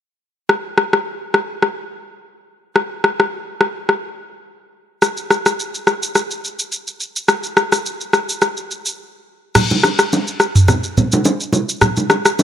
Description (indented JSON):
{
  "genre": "afrobeats",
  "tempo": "106 BPM",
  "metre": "4/4",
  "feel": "swing 55% on 16ths",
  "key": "none",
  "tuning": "none",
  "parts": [
    { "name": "afro-pop drum kit", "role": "drums", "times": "0.5-12.4 s", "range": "crash cymbal, rim click, shaker, toms", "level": "-15 LUFS", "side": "left 1 dB", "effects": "none" },
    { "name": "congas and bongos", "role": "percussion", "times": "9.6-12.4 s", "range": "none", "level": "-16 LUFS", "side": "right 2 dB", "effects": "none" }
  ],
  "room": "light reverb",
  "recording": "none",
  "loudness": "-15 LUFS",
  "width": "side -10 dB against mid",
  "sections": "0.5-9.5 A section; 9.5-12.4 B section",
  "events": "break 9.0-9.5; kick muted 9.5-12.4",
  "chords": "none"
}